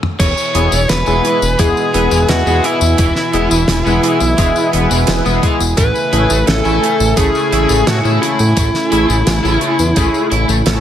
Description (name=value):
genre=synthwave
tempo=86 BPM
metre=4/4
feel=straight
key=E major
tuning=A4 = 440 Hz
part: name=damped 70s drum kit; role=drums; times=0.0-10.8 s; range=crash cymbal, hi-hat, snare drum, tambourine, toms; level=-20 LUFS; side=right 1 dB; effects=gated reverb
part: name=bluesy overdriven lead guitar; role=melody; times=0.2-10.3 s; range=E4 to C#5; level=-17 LUFS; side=equal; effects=distortion, digital delay
part: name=chorused pulse-width pad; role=sustained chords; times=0.2-10.8 s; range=B2 to G#5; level=-20 LUFS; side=right 1 dB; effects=sidechain pumping
part: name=raw garage guitar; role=riff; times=0.2-10.5 s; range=E3 to E4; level=-22 LUFS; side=left 1 dB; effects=overdrive, lush chorus, tape echo
part: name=fat analog bass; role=bass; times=0.2-10.8 s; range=E1 to A2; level=-16 LUFS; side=equal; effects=none
part: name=electronic kick drum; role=drums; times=0.2-10.1 s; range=none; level=-16 LUFS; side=equal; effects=overdrive
part: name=chorused polysynth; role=stabs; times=0.5-10.8 s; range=G#3 to G#5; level=-19 LUFS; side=left 2 dB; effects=cassette tape, digital delay
room=light reverb, small room reverb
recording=none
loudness=-11 LUFS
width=side -10 dB against mid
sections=0.2-10.8 A section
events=drum fill 0.0; stop 0.0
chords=0.2 E; 5.8 Amaj7